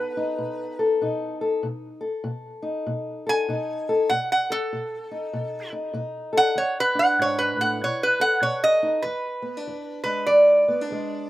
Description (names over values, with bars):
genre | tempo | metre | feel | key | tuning
acoustic country blues, solo or duo | 97 BPM | 4/4 | swing 63% on 8ths | unclear | A4 = 440 Hz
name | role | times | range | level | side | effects
lap resonator guitar | melody | 0.0-11.3 s | A4 to G#5 | -20 LUFS | right 1 dB | none
fingerpicked steel-string acoustic guitar | accompaniment | 0.0-11.3 s | E2 to A4 | -27 LUFS | left 2 dB | none
room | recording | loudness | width
light reverb | recorded outdoors, with no room sound | -21 LUFS | side -16 dB against mid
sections
0.0-9.0 A section; 9.0-11.3 B section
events
resonator guitar played with a steel bar solo 0.0-9.0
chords
0.0 B7; 6.6 E7; 7.8 B7; 9.0 E7